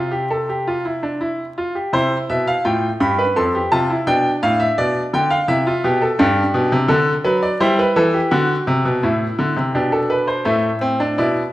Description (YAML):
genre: classical, baroque-style 3-part fugue for grand piano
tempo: 84 BPM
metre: 3/4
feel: straight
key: C major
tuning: A4 = 441 Hz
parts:
  - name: bright grand piano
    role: solo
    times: 0.0-11.4 s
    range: F2 to C6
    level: -16 LUFS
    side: equal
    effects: none
room: moderate recital hall reverb, RT60 1.3 s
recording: vinyl crackle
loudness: -16 LUFS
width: side -16 dB against mid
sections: 0.0-1.9 A section; 1.9-10.5 B section; 10.5-11.5 C section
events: none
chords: 0.0 C; 3.4 Fmaj9; 4.1 G; 5.5 C; 6.2 G; 7.6 Am7/G; 8.3 D; 9.8 G/B; 10.5 Am